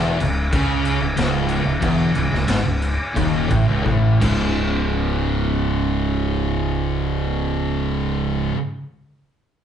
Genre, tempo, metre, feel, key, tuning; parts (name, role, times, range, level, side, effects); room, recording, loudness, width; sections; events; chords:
stoner and doom metal; 83-95 BPM; 4/4; straight; C# minor; A4 = 440 Hz
overdriven semi-hollow guitar; riff; 0.0-8.6 s; C#2 to C#3; -24 LUFS; equal
thick fuzz guitar; riff; 0.0-8.6 s; C#2 to C#3; -25 LUFS; left 4 dB; distortion
thick fuzz guitar; riff; 0.0-8.6 s; C#2 to C#3; -24 LUFS; right 6 dB; distortion
growling fingered electric bass; bass; 0.0-8.5 s; C#1 to C#2; -25 LUFS; left 1 dB; overdrive
raw garage drum kit; drums; 0.2-4.4 s; crash cymbal, kick drum, snare drum; -24 LUFS; left 1 dB
wet large studio reverb, RT60 0.8 s; band playing live in one room, nothing above 10.8 kHz; -18 LUFS; side -8 dB against mid
0.0-4.6 A section; 4.6-7.5 B section
slowing down 0.0-4.6; drum fill 3.9-4.6
0.0 C#m; 4.2 C#5